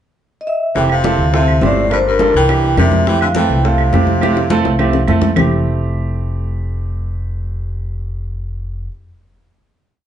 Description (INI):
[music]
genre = Afro-Cuban jazz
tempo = 208 BPM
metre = 4/4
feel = straight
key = F major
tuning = A4 = 440 Hz
[part]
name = vibraphone with soft mallets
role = melody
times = 0.4-5.1 s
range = Bb4 to G5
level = -18 LUFS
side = equal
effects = plate reverb
[part]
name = bright baritone saxophone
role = second line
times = 0.8-5.0 s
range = G2 to E3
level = -20 LUFS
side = left 4 dB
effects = none
[part]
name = warm grand piano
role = accompaniment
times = 0.8-8.9 s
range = A3 to A4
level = -18 LUFS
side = right 4 dB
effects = none
[part]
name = upright bass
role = bass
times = 0.8-8.9 s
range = F1 to F2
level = -17 LUFS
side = equal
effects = none
[part]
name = bongos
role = percussion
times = 0.8-5.4 s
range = none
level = -24 LUFS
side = left 5 dB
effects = none
[part]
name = congas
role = percussion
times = 0.8-5.4 s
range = none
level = -22 LUFS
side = equal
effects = none
[part]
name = claves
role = percussion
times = 0.9-5.4 s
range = none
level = -27 LUFS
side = right 3 dB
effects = none
[sound]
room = wet club reverb, RT60 0.8 s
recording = heard from further back in the room, nothing above 10.7 kHz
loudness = -13 LUFS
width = side -10 dB against mid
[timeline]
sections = 0.0-0.8 pickup bar; 0.8-5.4 A section; 5.4-7.7 final chord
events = drum fill 4.2-5.4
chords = 0.0 N.C.; 0.8 Fmaj7; 1.3 Dm9; 1.9 Gm7; 2.5 C7; 3.1 Fmaj7